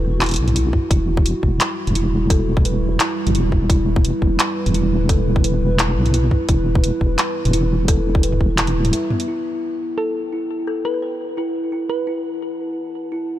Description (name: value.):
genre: half-time drum and bass.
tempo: 172 BPM.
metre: 4/4.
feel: half-time.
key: E minor.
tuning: A4 = 440 Hz.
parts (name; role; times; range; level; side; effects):
dark analog pad; sustained chords; 0.0-13.4 s; G3 to A5; -28 LUFS; right 1 dB; chorus, sidechain pumping.
deep soft wobble bass; bass; 0.0-8.9 s; D1 to B1; -19 LUFS; equal; chorus.
kalimba; arpeggios; 0.2-13.4 s; B3 to E5; -24 LUFS; equal; low-pass filter, ping-pong delay.
drum and bass drum kit; drums; 0.2-9.3 s; handclaps, hi-hat, toms; -21 LUFS; equal; low-pass filter on hats, small room reverb, low-pass filter on toms, low-pass filter on snare.
electronic kick drum; drums; 0.7-8.5 s; none; -17 LUFS; equal; small room reverb.
thumb-piano-like synth pluck; melody; 10.0-12.2 s; A4 to B4; -26 LUFS; equal; chorus, ping-pong delay.
room: light reverb, digital ambience.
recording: none.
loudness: -17 LUFS.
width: side -13 dB against mid.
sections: 0.0-9.3 A section; 9.3-13.4 B section.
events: break 8.9-9.3; filter sweep on analog synth pad 9.3-13.4.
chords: 0.0 Emadd9.